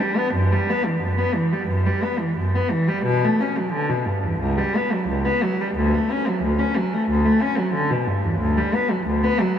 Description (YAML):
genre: classical, baroque-style suite movement for unaccompanied cello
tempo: 89 BPM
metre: 4/4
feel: rubato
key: B minor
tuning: A4 = 440 Hz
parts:
  - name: warm cello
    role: solo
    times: 0.0-9.6 s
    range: C#2 to C#4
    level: -19 LUFS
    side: equal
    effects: none
room: wet huge ambient reverb, RT60 8.7 s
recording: in a vast, echoing space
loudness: -19 LUFS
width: side -9 dB against mid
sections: 0.0-9.6 A section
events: none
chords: none